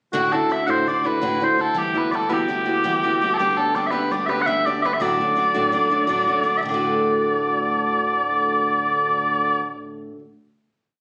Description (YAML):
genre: celtic folk, Celtic slip jig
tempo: 112 BPM (dotted quarters)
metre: 9/8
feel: straight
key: D major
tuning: A4 = 439 Hz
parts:
  - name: mellow small bagpipes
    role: melody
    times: 0.1-9.6 s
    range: F#4 to F#5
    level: -22 LUFS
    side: equal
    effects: none
  - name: picked old ladder-braced acoustic guitar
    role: accompaniment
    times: 0.1-10.2 s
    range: D2 to G4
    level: -27 LUFS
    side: equal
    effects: none
  - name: hand-pumped harmonium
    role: drone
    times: 0.1-9.6 s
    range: D2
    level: -34 LUFS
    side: equal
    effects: none
room: moderate studio reverb, RT60 0.5 s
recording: recorded on a phone in the room, studio reverb, compression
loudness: -21 LUFS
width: mono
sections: 0.1-6.6 A section; 6.6-9.8 final chord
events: none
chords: 0.1 Dadd9; 1.8 Emadd9; 3.4 G; 5.0 D